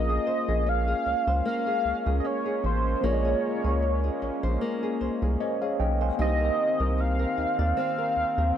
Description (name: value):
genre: contemporary R&B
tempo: 76 BPM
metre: 4/4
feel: swing 54% on 16ths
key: Bb dorian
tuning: A4 = 440 Hz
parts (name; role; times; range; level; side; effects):
- warm velvety synth lead; melody; 0.0-8.5 s; C5 to F5; -27 LUFS; right 1 dB; chorus, phaser
- mellow tine electric piano; accompaniment; 0.0-8.6 s; Bb3 to Ab5; -32 LUFS; equal; medium stereo tremolo
- warm analog pad; sustained chords; 0.0-8.6 s; Eb3 to Db4; -35 LUFS; right 1 dB; chorus
- flamenco guitar; arpeggios; 0.0-8.6 s; Bb3 to D5; -33 LUFS; left 4 dB; none
- rubbery square bass; bass; 0.0-8.5 s; A1 to Eb2; -26 LUFS; equal; none
room: little or no reverb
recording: dry, gritty hardware recording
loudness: -24 LUFS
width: side -9 dB against mid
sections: 0.0-8.6 A section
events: none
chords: 0.0 Bbm9; 6.2 Cm9